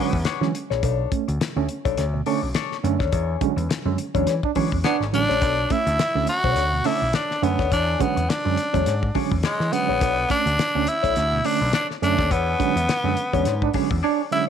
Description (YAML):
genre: funk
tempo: 104 BPM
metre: 4/4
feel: swing 56% on 16ths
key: B dorian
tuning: A4 = 440 Hz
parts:
  - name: raspy tenor saxophone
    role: melody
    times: 0.0-0.5, 4.8-14.5 s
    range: G#3 to F#4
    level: -23 LUFS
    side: equal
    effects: none
  - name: clean electric guitar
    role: accompaniment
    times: 0.0-14.4 s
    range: D4 to C#5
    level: -28 LUFS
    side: left 16 dB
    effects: wah
  - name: overdriven reed electric piano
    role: stabs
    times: 0.0-14.5 s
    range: B2 to C#4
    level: -26 LUFS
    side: right 11 dB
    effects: fast tremolo, slapback echo
  - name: picked electric bass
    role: bass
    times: 0.1-14.0 s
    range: G#1 to E3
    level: -25 LUFS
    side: equal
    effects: tube saturation
  - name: damped 70s drum kit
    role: drums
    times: 0.1-14.0 s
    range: hi-hat, kick drum, snare drum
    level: -27 LUFS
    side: left 3 dB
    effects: none
  - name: dark trombone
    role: second line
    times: 4.4-5.0, 13.6-14.2 s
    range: D4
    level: -26 LUFS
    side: right 13 dB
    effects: none
room: light reverb, small room ambience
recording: 1960s-style stereo with parts hard left and right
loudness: -20 LUFS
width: side -8 dB against mid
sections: 0.0-14.5 A section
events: band accent 3.1-5.4, 12.3-14.5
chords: 0.0 E13; 0.8 Bm9; 3.1 E13; 5.4 Bm9; 7.7 E13; 10.0 Bm9; 12.3 E13